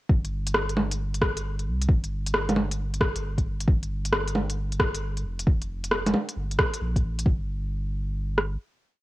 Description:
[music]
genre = future garage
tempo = 134 BPM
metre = 4/4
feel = swing 67% on 16ths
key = G minor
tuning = A4 = 441 Hz
[part]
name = warm sub bass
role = bass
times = 0.1-8.6 s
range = F1 to C2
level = -30 LUFS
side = equal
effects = sidechain pumping
[part]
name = organic electronic drum kit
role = drums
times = 0.1-8.5 s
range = kick drum, rim click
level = -23 LUFS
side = equal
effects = cassette tape
[part]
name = organic electronic drum kit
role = drums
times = 0.2-7.2 s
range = bongos, hi-hat, rim click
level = -25 LUFS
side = equal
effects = cassette tape
[sound]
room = light reverb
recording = home recording on cassette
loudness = -24 LUFS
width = side -17 dB against mid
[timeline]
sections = 0.1-7.3 groove; 7.3-9.0 final note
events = none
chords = none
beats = | 0.10 0.55 0.99 1.44 | 1.89 2.34 2.79 3.23 | 3.68 4.13 4.58 5.02 | 5.47 5.92 6.37 6.82 | 7.26 7.71 8.16

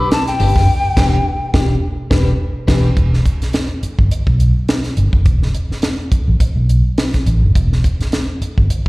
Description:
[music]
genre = funk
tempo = 105 BPM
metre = 4/4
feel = swing 56% on 16ths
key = E minor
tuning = A4 = 440 Hz
[part]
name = breathy mellow silver concert flute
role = melody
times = 0.0-1.7 s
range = G5 to B5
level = -19 LUFS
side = left 3 dB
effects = plate reverb, slapback echo
[part]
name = electric guitar at the edge of break-up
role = accompaniment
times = 0.0-2.9 s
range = D4 to B4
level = -23 LUFS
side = left 3 dB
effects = harmonic tremolo, plate reverb, slapback echo
[part]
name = tight funk drum kit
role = drums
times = 0.1-8.9 s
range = crash cymbal, hi-hat, kick drum, snare drum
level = -16 LUFS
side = equal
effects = slapback echo
[part]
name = vintage muted fingered electric bass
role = bass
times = 0.4-8.9 s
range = E1 to B1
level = -14 LUFS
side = equal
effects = none
[sound]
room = light reverb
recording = live gig heard through the venue's PA, recital hall reverb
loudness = -13 LUFS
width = side -22 dB against mid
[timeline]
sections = 0.0-3.0 A section; 3.0-8.9 B section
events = flute solo 0.0-3.0; band accent 0.7-3.0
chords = 0.0 Em7; 3.0 Em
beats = 0.11 | 0.68 1.25 1.82 2.39 | 2.97 3.54 4.11 4.68 | 5.26 5.83 6.41 6.98 | 7.55 8.13 8.70

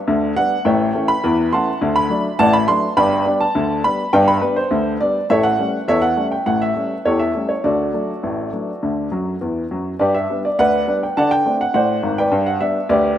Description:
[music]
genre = ragtime piano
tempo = 103 BPM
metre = 2/4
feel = straight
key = G major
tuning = A4 = 440 Hz
[part]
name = warm upright piano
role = solo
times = 0.1-13.2 s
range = G1 to C6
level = -16 LUFS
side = equal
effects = none
[sound]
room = moderate plate reverb, RT60 3.1 s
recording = rough home demo mix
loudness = -16 LUFS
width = side -10 dB against mid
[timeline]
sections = 0.0-10.0 A section; 10.0-13.2 B section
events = upright piano fill 9.1-10.0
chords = 0.0 G; 0.7 A; 1.8 D; 3.0 G; 5.3 A7; 7.6 D; 10.0 G; 11.2 D7; 12.3 G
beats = 0.07 | 0.66 1.23 | 1.81 2.39 | 2.97 3.55 | 4.13 4.71 | 5.30 5.88 | 6.46 7.05 | 7.64 8.23 | 8.82 9.41 | 9.99 10.58 | 11.16 11.74 | 12.32 12.89

